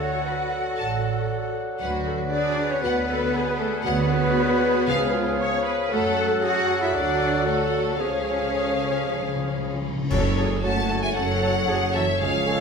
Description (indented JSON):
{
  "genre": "classical, dramatic, fast romantic movement for symphony orchestra",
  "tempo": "116 BPM",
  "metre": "4/4",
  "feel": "straight",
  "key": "F# minor",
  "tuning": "A4 = 440 Hz",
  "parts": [
    { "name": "clear oboe", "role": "second line", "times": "0.0-12.6 s", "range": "G#4 to A5", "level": "-35 LUFS", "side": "right 1 dB", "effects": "none" },
    { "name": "mellow clarinet", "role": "second line", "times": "0.0-12.6 s", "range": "F#4 to F#5", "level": "-33 LUFS", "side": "left 3 dB", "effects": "none" },
    { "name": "mellow hollow silver concert flute", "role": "second line", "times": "0.0-12.6 s", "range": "F#4 to F#5", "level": "-31 LUFS", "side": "equal", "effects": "none" },
    { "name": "warm symphonic violin section", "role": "second line", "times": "0.0-12.5 s", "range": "C#4 to F#5", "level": "-34 LUFS", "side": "left 3 dB", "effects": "none" },
    { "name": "mellow bassoon", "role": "accompaniment", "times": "0.0-12.6 s", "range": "E#3 to G#3", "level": "-33 LUFS", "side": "right 2 dB", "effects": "none" },
    { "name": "rich symphonic viola section", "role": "accompaniment", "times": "0.0-12.6 s", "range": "E#4 to C#5", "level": "-30 LUFS", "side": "equal", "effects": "none" },
    { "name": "mellow French horn section", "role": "sustained chords", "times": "0.0-12.6 s", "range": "C#4 to D5", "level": "-32 LUFS", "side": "left 5 dB", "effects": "none" },
    { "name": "warm trumpet section", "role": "stabs", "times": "0.0-12.6 s", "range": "C#5 to F#5", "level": "-31 LUFS", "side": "right 1 dB", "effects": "none" },
    { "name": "rich studio cello section", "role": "bass", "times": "0.0-12.6 s", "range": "C#3 to F#4", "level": "-30 LUFS", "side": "right 1 dB", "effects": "none" },
    { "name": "rich symphonic double bass section", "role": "bass", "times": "0.0-12.6 s", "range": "A1 to F#2", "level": "-30 LUFS", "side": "right 4 dB", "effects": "none" },
    { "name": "bright symphonic violin section", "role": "melody", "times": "0.8-12.6 s", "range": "C#5 to A5", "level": "-30 LUFS", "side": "left 3 dB", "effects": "none" },
    { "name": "timpani", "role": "percussion", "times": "4.9-12.6 s", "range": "F#2 to C#3", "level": "-31 LUFS", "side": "left 3 dB", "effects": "none" },
    { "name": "cymbal swell, clash cymbals and concert bass drum", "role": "percussion", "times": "5.9-11.1 s", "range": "none", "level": "-33 LUFS", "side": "equal", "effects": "none" },
    { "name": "warm tuba", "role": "bass", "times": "10.1-12.6 s", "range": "F#1 to C#2", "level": "-30 LUFS", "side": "right 2 dB", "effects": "none" }
  ],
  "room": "moderate scoring stage reverb, RT60 1.9 s",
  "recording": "minimal, uncompressed stereo recording",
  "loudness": "-21 LUFS",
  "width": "side -5 dB against mid",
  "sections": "0.0-10.1 A section; 10.1-12.6 B section",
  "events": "timpani fill 8.0-10.1; band accent 10.1-10.6",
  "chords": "0.0 D; 1.8 Bm/D; 3.9 G#m7b5/D; 4.9 C#; 5.9 F#m; 7.0 D; 8.0 C#; 10.1 F#m"
}